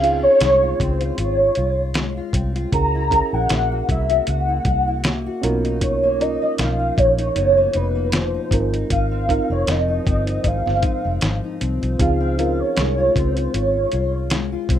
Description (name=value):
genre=indie pop, bedroom pop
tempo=78 BPM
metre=4/4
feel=swing 55% on 16ths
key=unclear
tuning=A4 = 436 Hz
part: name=warm velvety synth lead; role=melody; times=0.0-14.7 s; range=Cb5 to Bb5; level=-20 LUFS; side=right 1 dB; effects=ensemble chorus, plate reverb, tape echo
part: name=fingerpicked steel-string acoustic guitar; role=accompaniment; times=0.0-14.8 s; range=Ab2 to Gb4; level=-27 LUFS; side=left 4 dB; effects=lush chorus, warbly pitch drift, plate reverb
part: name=reed electric piano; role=accompaniment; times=0.0-14.8 s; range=C4 to Bb4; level=-28 LUFS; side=right 5 dB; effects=cassette tape, plate reverb
part: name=vintage muted fingered electric bass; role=bass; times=0.0-14.8 s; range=F1 to Db2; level=-23 LUFS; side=equal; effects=none
part: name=lo-fi sampler-style drum kit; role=drums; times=0.0-14.8 s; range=hi-hat, kick drum, snare drum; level=-22 LUFS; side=equal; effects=overdrive
room=moderate small room reverb, RT60 0.5 s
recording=rough home demo mix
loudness=-17 LUFS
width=side -10 dB against mid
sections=0.0-14.8 A section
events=none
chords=0.0 Dbmaj7; 2.7 Gb7; 5.4 Cbmaj9#11; 8.5 Ab6; 12.0 Dbmaj7